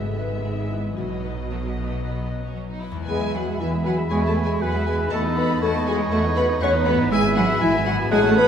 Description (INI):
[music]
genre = cinematic, playful, whimsical film cue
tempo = 117 BPM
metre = 4/4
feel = uneven beats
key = E major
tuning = A4 = 439 Hz
[part]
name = marimba with soft mallets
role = melody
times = 0.0-8.5 s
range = D#4 to C#5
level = -30 LUFS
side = left 2 dB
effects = none
[part]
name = muted studio violin section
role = melody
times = 0.0-8.5 s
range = C#5 to G#5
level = -34 LUFS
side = left 1 dB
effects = none
[part]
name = muted chamber violin section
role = second line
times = 0.0-8.5 s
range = G#3 to C#6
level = -33 LUFS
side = left 1 dB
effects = none
[part]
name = muted chamber viola section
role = accompaniment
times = 0.0-8.5 s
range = F#3 to B4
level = -30 LUFS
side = right 1 dB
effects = none
[part]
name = concert harp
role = arpeggios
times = 0.0-8.5 s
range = E2 to E5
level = -31 LUFS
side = left 6 dB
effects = none
[part]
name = muted chamber cello section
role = bass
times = 0.0-8.4 s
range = G#2 to C#4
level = -27 LUFS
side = right 2 dB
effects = none
[part]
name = muted symphonic double bass section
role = bass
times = 0.0-8.5 s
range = G#1 to E2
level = -27 LUFS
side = right 3 dB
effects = none
[part]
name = dark clarinet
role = second line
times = 3.1-8.5 s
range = C#5 to E5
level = -32 LUFS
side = equal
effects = none
[part]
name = mellow hollow flute section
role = second line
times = 3.1-8.5 s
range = A5 to B5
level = -32 LUFS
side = left 2 dB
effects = none
[part]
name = mellow French horn section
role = sustained chords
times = 3.1-8.5 s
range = E4 to C#5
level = -25 LUFS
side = left 3 dB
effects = none
[part]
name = clear oboe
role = second line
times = 4.1-8.5 s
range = A4 to G#5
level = -28 LUFS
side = right 2 dB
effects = none
[sound]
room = wet scoring stage reverb, RT60 2.0 s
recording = none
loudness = -20 LUFS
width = side -8 dB against mid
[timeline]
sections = 0.0-3.1 A section; 3.1-8.5 B section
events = none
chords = 0.0 E/G#; 1.0 B; 3.1 E; 5.1 B7/E; 7.1 E/G#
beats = 0.46 | 0.98 1.51 2.04 2.56 | 3.09 3.60 4.11 4.62 | 5.12 5.62 6.12 6.62 | 7.12 7.62 8.12